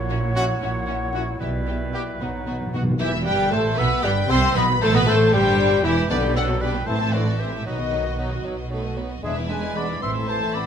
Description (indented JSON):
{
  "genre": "quick classical-period movement for symphony orchestra",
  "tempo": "77 BPM (dotted quarters)",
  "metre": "6/8",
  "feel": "straight",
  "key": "E minor",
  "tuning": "A4 = 440 Hz",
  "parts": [
    { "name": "large flute ensemble", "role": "second line", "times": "0.0-10.6 s", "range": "D5 to C6", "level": "-31 LUFS", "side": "left 6 dB", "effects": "none" },
    { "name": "mellow clarinet", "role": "second line", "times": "0.0-10.7 s", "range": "B3 to C5", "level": "-30 LUFS", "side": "left 5 dB", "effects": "none" },
    { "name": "warm oboe", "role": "second line", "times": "0.0-10.7 s", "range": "F#4 to E5", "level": "-30 LUFS", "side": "right 2 dB", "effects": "none" },
    { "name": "mellow bassoon", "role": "accompaniment", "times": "0.0-10.7 s", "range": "E3 to C4", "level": "-31 LUFS", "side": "equal", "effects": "none" },
    { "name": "dark studio double bass section", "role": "bass", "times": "0.0-10.7 s", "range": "E1 to C2", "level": "-27 LUFS", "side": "right 3 dB", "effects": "none" },
    { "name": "warm studio cello section", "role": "bass", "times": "0.0-10.7 s", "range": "E2 to C3", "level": "-28 LUFS", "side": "right 2 dB", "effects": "none" },
    { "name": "dark studio violin section", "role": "melody", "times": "0.1-10.7 s", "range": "D5 to C6", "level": "-29 LUFS", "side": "left 1 dB", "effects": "none" },
    { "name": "clear studio violin section", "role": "second line", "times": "0.1-10.7 s", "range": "D#4 to E5", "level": "-31 LUFS", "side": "left 2 dB", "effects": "none" },
    { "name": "warm studio viola section", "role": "accompaniment", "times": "0.1-10.7 s", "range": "E3 to F#4", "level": "-28 LUFS", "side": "right 1 dB", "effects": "none" },
    { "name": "mellow French horn section", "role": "sustained chords", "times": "0.3-10.7 s", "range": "D3 to E4", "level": "-30 LUFS", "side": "left 5 dB", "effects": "none" },
    { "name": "bright trumpet section", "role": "stabs", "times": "0.4-2.8 s", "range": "F#4 to G4", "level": "-31 LUFS", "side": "right 1 dB", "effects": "none" },
    { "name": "timpani", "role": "percussion", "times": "1.4-6.8, 9.2-10.0 s", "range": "E2 to B2", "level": "-31 LUFS", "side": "equal", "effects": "none" }
  ],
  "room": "moderate recital hall reverb, RT60 1.4 s",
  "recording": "close, detailed microphones",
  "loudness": "-19 LUFS",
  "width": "side -8 dB against mid",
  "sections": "0.0-3.0 A section; 3.0-10.7 B section",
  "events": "timpani fill 2.2-3.0",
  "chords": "0.0 F#7/A#; 1.4 Em/B; 2.2 B; 3.0 Em; 4.6 Amadd9; 5.3 C/G; 6.1 G/B; 6.9 Am; 7.7 B; 9.2 E7; 10.0 Am"
}